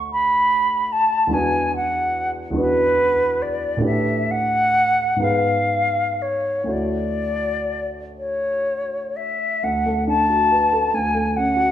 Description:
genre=classical, impressionist duo for flute and grand piano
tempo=40-51 BPM (dotted quarters)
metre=6/8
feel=rubato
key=D lydian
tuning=A4 = 440 Hz
part: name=warm concert grand piano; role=accompaniment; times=0.0-11.7 s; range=D2 to E5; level=-24 LUFS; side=right 1 dB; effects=none
part: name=concert flute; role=melody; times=0.1-11.7 s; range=B4 to B5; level=-19 LUFS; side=left 1 dB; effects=none
room=wet recital hall reverb, RT60 1.6 s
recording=minimal, uncompressed stereo recording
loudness=-18 LUFS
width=side -11 dB against mid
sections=0.0-9.6 A section; 9.6-11.7 A section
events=none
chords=0.0 Dsus2; 1.4 E9; 3.9 A11; 5.2 G#m6; 6.7 Dmaj9; 9.6 D6; 10.9 Bm9/D (rootless)

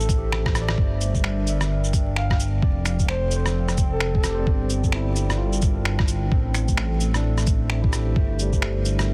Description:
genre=future garage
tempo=130 BPM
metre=4/4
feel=swing 60% on 16ths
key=G dorian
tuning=A4 = 440 Hz
part: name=barky tine electric piano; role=accompaniment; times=0.0-9.1 s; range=G3 to E5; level=-35 LUFS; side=equal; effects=vintage 12-bit sampler grit, sidechain pumping, delay
part: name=warbly tape-like pad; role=sustained chords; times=0.0-9.1 s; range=F3 to G5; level=-34 LUFS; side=equal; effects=chorus, built-in reverb, sidechain pumping
part: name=dark detuned saw bass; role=bass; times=0.0-9.1 s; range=F1 to A1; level=-26 LUFS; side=equal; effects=sidechain pumping
part: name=electronic shaker, cabasa, finger snaps and rim click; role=drums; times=0.0-9.1 s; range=none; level=-31 LUFS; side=equal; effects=soft clipping on snare
part: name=electronic kick drum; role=drums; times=0.1-8.6 s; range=none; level=-24 LUFS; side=equal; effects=none
part: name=breathy flute-like synth lead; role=melody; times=2.2-4.5 s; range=A4 to F5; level=-34 LUFS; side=equal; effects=chorus, delay
room=little or no reverb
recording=dense, heavily limited modern master, vinyl crackle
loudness=-22 LUFS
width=mono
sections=0.0-9.1 A section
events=drum fill 0.3-0.8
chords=0.0 Am; 0.8 Gm; 2.6 Fadd9; 4.5 Gm; 6.3 Am; 8.2 Gm

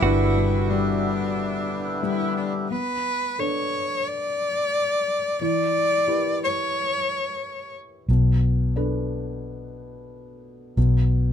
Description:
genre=acoustic folk-pop ballad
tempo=89 BPM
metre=4/4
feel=straight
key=B minor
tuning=A4 = 440 Hz
part: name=felt-muted upright piano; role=melody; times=0.0-11.3 s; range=B2 to G5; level=-26 LUFS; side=left 3 dB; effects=none
part: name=clear cello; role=second line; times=0.0-7.7 s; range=D4 to D5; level=-24 LUFS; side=left 1 dB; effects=none
part: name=hand-pumped harmonium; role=sustained chords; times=0.0-2.7 s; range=D3 to E4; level=-29 LUFS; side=right 1 dB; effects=none
part: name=direct-recorded clean electric guitar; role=arpeggios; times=0.0-1.7 s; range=F#4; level=-30 LUFS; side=right 7 dB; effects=tremolo
part: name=vintage muted fingered electric bass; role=bass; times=0.0-2.7, 8.1-11.3 s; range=G1 to B1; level=-22 LUFS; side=right 1 dB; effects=none
room=little or no reverb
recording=close, detailed microphones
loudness=-21 LUFS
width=side -8 dB against mid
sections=0.0-2.7 A section; 2.7-11.3 B section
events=cello solo 2.7-11.3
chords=0.0 Em7/G; 2.7 Bm7; 5.4 Em; 8.1 Bm7

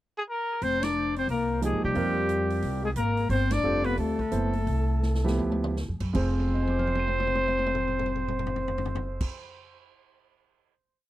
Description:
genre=modal jazz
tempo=153-179 BPM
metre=4/4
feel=swing 63% on 8ths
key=F dorian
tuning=A4 = 440 Hz
part: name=warm trumpet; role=melody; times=0.2-9.2 s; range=G4 to D5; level=-30 LUFS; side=right 2 dB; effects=tape echo
part: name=breathy trombone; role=second line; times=0.6-9.2 s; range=G3 to D4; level=-31 LUFS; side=left 6 dB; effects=none
part: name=upright bass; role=bass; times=0.6-9.2 s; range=F1 to C3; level=-29 LUFS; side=equal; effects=none
part: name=swinging big-band drum kit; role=drums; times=0.6-10.7 s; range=crash cymbal, hi-hat, kick drum, ride cymbal, snare drum, toms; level=-35 LUFS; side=equal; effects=none
part: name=warm concert grand piano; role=accompaniment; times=1.6-9.5 s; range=F2 to Eb7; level=-31 LUFS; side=right 3 dB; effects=none
room=little or no reverb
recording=dry, close 1970s-style studio recording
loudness=-25 LUFS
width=side -14 dB against mid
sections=0.0-0.6 pickup bar; 0.6-6.1 A section; 6.1-9.3 final chord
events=band accent 0.8, 3.5; slowing down 3.3-6.1; drum fill 5.0-5.8, 6.3-9.2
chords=0.0 N.C.; 0.6 F13sus4; 3.3 G13sus4; 6.1 Fm

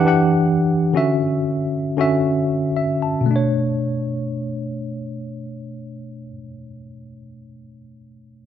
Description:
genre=amapiano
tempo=free time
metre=none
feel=none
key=B minor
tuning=A4 = 439 Hz
part: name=mellow tine electric piano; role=accompaniment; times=0.0-8.5 s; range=B2 to A5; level=-19 LUFS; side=equal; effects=medium stereo tremolo
room=light reverb, digital ambience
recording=none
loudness=-18 LUFS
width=side -9 dB against mid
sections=0.0-3.3 A section; 3.3-7.4 B section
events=tine electric piano fill 2.5-3.3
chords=0.0 Em9; 0.9 Dmaj9; 3.3 Bm9

